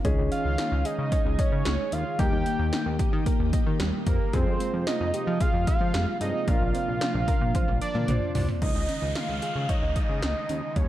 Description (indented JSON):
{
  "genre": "synth-pop",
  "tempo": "112 BPM",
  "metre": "4/4",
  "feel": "straight",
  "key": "unclear",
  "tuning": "A4 = 440 Hz",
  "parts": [
    { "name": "dark grand piano", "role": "accompaniment", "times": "0.0-8.6 s", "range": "Bb3 to C5", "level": "-35 LUFS", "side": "left 2 dB", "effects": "none" },
    { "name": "ensemble organ-string", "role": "sustained chords", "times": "0.0-10.9 s", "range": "Bb2 to Ab4", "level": "-34 LUFS", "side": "equal", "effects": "phaser, ensemble chorus" },
    { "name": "soft round pluck", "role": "arpeggios", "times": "0.0-10.9 s", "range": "G3 to F5", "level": "-37 LUFS", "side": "right 3 dB", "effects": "chorus, tape echo" },
    { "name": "chorused synth bass", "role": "bass", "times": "0.0-10.9 s", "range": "Bb1 to F3", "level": "-28 LUFS", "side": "equal", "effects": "none" },
    { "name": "80s electronic pad drums", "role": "drums", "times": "0.0-10.9 s", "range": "hi-hat, kick drum, snare drum, toms", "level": "-27 LUFS", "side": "equal", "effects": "gated reverb on snare and toms" },
    { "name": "fat analog lead", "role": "melody", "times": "0.3-10.9 s", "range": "Bb4 to G5", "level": "-30 LUFS", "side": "right 2 dB", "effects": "none" },
    { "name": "downlifter", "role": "sound effects", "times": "8.6-10.9 s", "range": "none", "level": "-37 LUFS", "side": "equal", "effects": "none" }
  ],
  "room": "light reverb, digital ambience",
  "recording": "dark, warm production",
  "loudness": "-23 LUFS",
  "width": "side -13 dB against mid",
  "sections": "0.0-8.6 A section; 8.6-10.9 B section",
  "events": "drum fill 7.5-8.6",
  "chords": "0.0 Dbsus2; 2.2 Eb; 4.3 Fmadd9; 6.5 Bbadd9; 8.6 Dbsus2",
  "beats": "| 0.05 0.58 1.12 1.66 | 2.19 2.73 3.26 3.80 | 4.33 4.87 5.41 5.94 | 6.48 7.01 7.55 8.08 | 8.62 9.15 9.69 10.23 | 10.76"
}